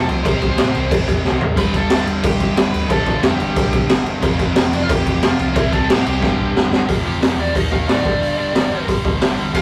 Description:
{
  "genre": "punk rock",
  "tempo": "181 BPM",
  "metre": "4/4",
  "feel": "straight",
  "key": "G mixolydian",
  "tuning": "A4 = 441 Hz",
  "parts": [
    { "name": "smooth overdriven lead guitar", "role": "melody", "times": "0.0-9.6 s", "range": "D4 to C6", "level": "-26 LUFS", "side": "equal", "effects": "none" },
    { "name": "overdriven electric guitar", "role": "riff", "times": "0.0-9.6 s", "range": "F2 to Eb4", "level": "-24 LUFS", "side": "equal", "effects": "none" },
    { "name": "overdriven picked electric bass", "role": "bass", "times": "0.0-9.6 s", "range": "F1 to A2", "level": "-28 LUFS", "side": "equal", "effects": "none" },
    { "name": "raw garage drum kit", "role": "drums", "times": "0.1-9.6 s", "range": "crash cymbal, hi-hat, kick drum, snare drum, splash cymbal, toms", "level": "-19 LUFS", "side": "equal", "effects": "none" }
  ],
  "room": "light reverb",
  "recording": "rough rehearsal-room recording, warm saturation",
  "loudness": "-17 LUFS",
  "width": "mono",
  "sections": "0.0-6.9 A section; 6.9-9.6 B section",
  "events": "drum fill 1.2-1.6, 6.2-6.9; lead electric guitar solo 6.9-9.6",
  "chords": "0.2 C5; 1.6 G; 4.2 F5; 5.5 C; 6.2 G; 6.9 F5; 7.5 Eb5; 8.0 G5"
}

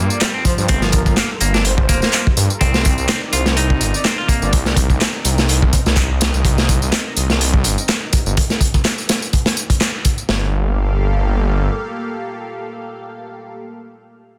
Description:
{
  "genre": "breakbeat, breaks",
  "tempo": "125 BPM",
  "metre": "4/4",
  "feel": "swing 55% on 16ths",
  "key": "G minor",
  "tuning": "A4 = 440 Hz",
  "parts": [
    { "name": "lush unison pad", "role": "sustained chords", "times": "0.0-13.5 s", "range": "G3 to F5", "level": "-31 LUFS", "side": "equal", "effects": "chorus, phaser, vintage 12-bit sampler grit, sidechain pumping" },
    { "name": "clean electric guitar", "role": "riff", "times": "0.0-4.5 s", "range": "F3 to F4", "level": "-25 LUFS", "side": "equal", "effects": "tube saturation, vintage 12-bit sampler grit, tape echo" },
    { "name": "detuned saw bass", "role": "bass", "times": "0.0-11.7 s", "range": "D1 to G2", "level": "-20 LUFS", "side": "equal", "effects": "none" },
    { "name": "breathy flute-like synth lead", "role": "melody", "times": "0.1-4.5 s", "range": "Bb4 to D5", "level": "-30 LUFS", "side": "equal", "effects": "chorus, small speaker sound, tape echo" },
    { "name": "electronic tambourine and handclaps", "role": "drums", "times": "0.1-10.3 s", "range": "none", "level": "-25 LUFS", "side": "equal", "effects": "none" },
    { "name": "crunchy breakbeat drum kit", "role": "drums", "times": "0.2-10.4 s", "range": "hi-hat, kick drum, snare drum", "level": "-19 LUFS", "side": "equal", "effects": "none" }
  ],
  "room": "small room ambience",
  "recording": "dense, heavily limited modern master",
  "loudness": "-17 LUFS",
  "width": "mono",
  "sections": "0.0-10.3 A section; 10.3-14.1 B section",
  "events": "drop 0.0-10.3; band accent 9.8",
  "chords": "0.0 Gm9; 2.6 Cm9; 10.3 Gm9"
}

